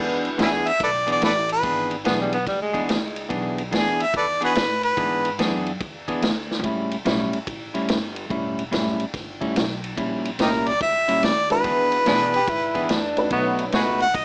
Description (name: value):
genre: electric blues shuffle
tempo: 144 BPM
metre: 4/4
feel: swing 66% on 8ths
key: E mixolydian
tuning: A4 = 440 Hz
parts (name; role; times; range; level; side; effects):
- honky-tonk upright piano; accompaniment; 0.0-0.4, 11.5-13.7 s; G#3 to B4; -25 LUFS; equal; plate reverb
- clean electric guitar; riff; 0.0-14.1 s; A2 to G#4; -25 LUFS; equal; none
- upright bass; bass; 0.0-14.2 s; E1 to B2; -34 LUFS; equal; none
- vintage drum kit; drums; 0.2-14.2 s; kick drum, ride cymbal, snare drum, toms; -26 LUFS; equal; none
- warm harmonica; melody; 0.4-5.4, 10.4-14.2 s; C#4 to F#5; -20 LUFS; equal; none
- breathy tenor saxophone; second line; 2.1-2.8, 12.1-13.7 s; G3 to G4; -25 LUFS; equal; analog delay
room: moderate studio reverb, RT60 0.6 s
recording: small speaker sound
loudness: -20 LUFS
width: side -39 dB against mid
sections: 0.0-14.2 A section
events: drum fill 6.4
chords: 0.0 E7; 6.6 A7; 10.0 A#dim7; 11.6 E7; 13.3 B7